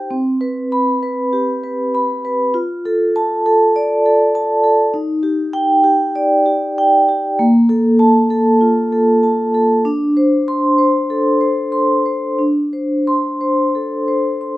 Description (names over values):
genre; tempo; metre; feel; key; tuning
classical, contemporary piece for solo vibraphone; 98 BPM; 4/4; uneven beats, rubato; unclear; A4 = 440 Hz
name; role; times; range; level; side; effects
vibraphone with soft mallets; solo; 0.0-14.6 s; Bb3 to C6; -13 LUFS; equal; none
room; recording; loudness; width
light reverb; dark, warm production; -13 LUFS; side -16 dB against mid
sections
0.0-14.6 A section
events
none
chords
0.1 C5; 2.5 F6; 4.9 Ebmaj7; 7.4 Bb5; 9.9 D5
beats
| 0.10 0.72 1.33 1.94 | 2.55 3.15 3.76 4.36 | 4.94 5.54 6.16 6.79 | 7.40 8.00 8.62 9.24 | 9.86 10.47 11.10 11.73 | 12.39 13.07 13.74 14.40